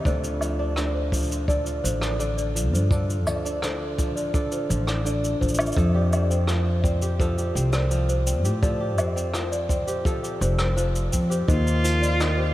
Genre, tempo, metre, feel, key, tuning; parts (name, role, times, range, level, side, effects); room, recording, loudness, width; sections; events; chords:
folktronica; 84 BPM; 4/4; straight; A4 = 438 Hz
kora; arpeggios; 0.0-12.5 s; C3 to A4; -29 LUFS; equal; analog delay
small celesta; second line; 0.1-12.5 s; C5 to D5; -31 LUFS; left 2 dB; analog delay
upright bass; bass; 0.1-12.5 s; F1 to A2; -24 LUFS; equal
jazz brush drum kit; drums; 0.1-12.3 s; cabasa, hi-hat, rim click, woodblock; -31 LUFS; equal
kick drum; drums; 0.1-11.6 s; -26 LUFS; equal
clear cello; melody; 11.5-12.5 s; F4; -25 LUFS; equal
moderate huge ambient reverb, RT60 8.7 s; dreamy mix soaked in reverb; -21 LUFS; side -15 dB against mid
0.0-11.5 A section; 11.5-12.5 B section
0.1 Dm; 5.8 Fadd9; 11.5 Ebadd9